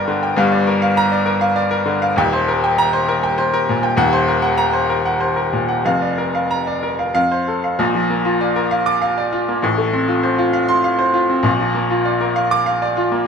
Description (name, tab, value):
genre	classical, virtuoso piano study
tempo	99 BPM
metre	3/4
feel	rubato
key	Bb major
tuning	A4 = 443 Hz
part	bright baby grand piano	solo	0.0-13.3 s	Eb1 to D6	-15 LUFS	equal	none
room	light reverb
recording	minimal, uncompressed stereo recording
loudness	-15 LUFS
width	side -6 dB against mid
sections	0.0-7.8 A section; 7.8-13.3 B section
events	none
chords	0.4 Gm7; 2.2 Cm7/Eb; 4.0 Cm7b5/Eb; 5.8 Bb/F; 7.2 F; 7.8 Bb; 9.6 F/A; 11.5 Bb